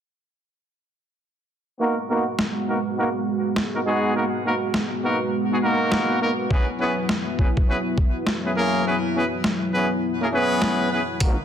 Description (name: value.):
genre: glitch hop.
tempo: 102 BPM.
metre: 4/4.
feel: swing 62% on 16ths.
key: G# minor.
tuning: A4 = 440 Hz.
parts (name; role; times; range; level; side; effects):
dark analog pad; sustained chords; 2.0-11.4 s; F#3 to F#4; -26 LUFS; equal; chorus, sidechain pumping.
bright horn section; stabs; 1.8-11.4 s; G#3 to B4; -23 LUFS; equal; sidechain pumping, low-pass filter, digital delay.
boom bap sampler-style drum kit; drums; 2.4-11.4 s; hi-hat, snare drum; -25 LUFS; equal; overdrive.
electronic kick drum; drums; 6.5-11.4 s; none; -19 LUFS; equal; overdrive.
wobble bass; bass; 11.2-11.4 s; G#1; -31 LUFS; equal; chorus, high-pass filter.
riser; sound effects; 11.4 s; none; -41 LUFS; right 5 dB; none.
room: moderate plate reverb, RT60 1.4 s.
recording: dense, heavily limited modern master.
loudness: -20 LUFS.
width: side -9 dB against mid.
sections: 1.8-11.2 A section.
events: filter sweep on horn section 1.8-11.2; kick drops out 8.9-11.2.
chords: 1.8 G#m7; 6.5 F#7sus4.